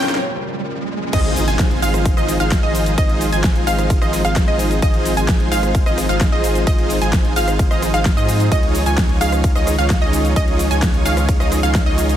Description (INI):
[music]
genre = EDM, festival progressive house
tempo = 130 BPM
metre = 4/4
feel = straight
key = Ab major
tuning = A4 = 441 Hz
[part]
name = warm concert grand piano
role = accompaniment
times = 0.0-1.2 s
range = Bb2 to F4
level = -33 LUFS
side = equal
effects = sidechain pumping, tape echo
[part]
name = lush unison pad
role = sustained chords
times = 0.0-12.2 s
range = Db3 to Db4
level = -26 LUFS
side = equal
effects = chorus, sidechain pumping
[part]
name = wide unison pluck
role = arpeggios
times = 0.0-12.2 s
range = Eb5 to Ab5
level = -23 LUFS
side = right 1 dB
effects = sidechain pumping, tape echo
[part]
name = dense compressed supersaw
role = riff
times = 0.0-12.2 s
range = Eb4 to Ab5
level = -22 LUFS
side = right 1 dB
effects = sidechain pumping, tape echo
[part]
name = big-room dance drum kit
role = drums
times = 0.0-12.2 s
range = crash cymbal, hi-hat, ride cymbal, rim click, shaker, snare drum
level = -25 LUFS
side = equal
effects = overdrive, small room ambience
[part]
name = riser and impact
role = sound effects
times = 0.0-3.0 s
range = none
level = -25 LUFS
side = equal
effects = none
[part]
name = saturated sub bass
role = bass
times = 1.1-12.2 s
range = Ab1 to Ab2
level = -21 LUFS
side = equal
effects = sidechain pumping
[part]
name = electronic kick drum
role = drums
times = 1.1-11.8 s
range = none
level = -18 LUFS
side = equal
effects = overdrive, small room ambience
[sound]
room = little or no reverb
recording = none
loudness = -14 LUFS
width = side -11 dB against mid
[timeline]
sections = 0.0-1.1 A section; 1.1-12.2 B section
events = build-up 0.0-1.1; drum fill 0.0; riser 0.0-1.1; filter sweep on analog synth pad 0.0-1.1; break 0.2-1.1; drop 1.1-12.2; impact 1.1-3.0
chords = 0.0 Bbmadd9; 1.1 Ab6; 8.5 Dbadd9